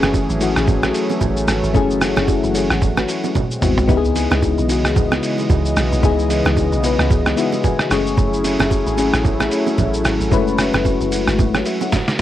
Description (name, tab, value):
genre	amapiano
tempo	112 BPM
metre	4/4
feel	swing 58% on 16ths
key	unclear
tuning	A4 = 440 Hz
part	mellow FM electric piano	accompaniment	0.0-12.2 s	G#3 to C#6	-20 LUFS	left 7 dB	chorus, cassette tape, plate reverb
part	warm analog pad	sustained chords	0.0-12.2 s	C#3 to D#5	-21 LUFS	right 1 dB	chorus, cassette tape, plate reverb
part	deep log drum bass	bass	0.0-12.2 s	F#1 to C#2	-22 LUFS	right 1 dB	none
part	lo-fi sampler-style drum kit	drums	0.0-12.2 s	hi-hat, kick drum, rim click, shaker, snare drum, toms	-20 LUFS	right 1 dB	cassette tape
part	bongos and congas	percussion	0.0-12.1 s	none	-26 LUFS	right 9 dB	none
room	light reverb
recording	home recording on cassette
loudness	-15 LUFS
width	side -12 dB against mid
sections	0.0-12.2 A section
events	drum fill 3.4-3.9, 11.9; FM electric piano fill 7.1-8.2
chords	0.0 F#m9; 3.4 G#7alt; 3.9 C#m9; 7.9 F#m9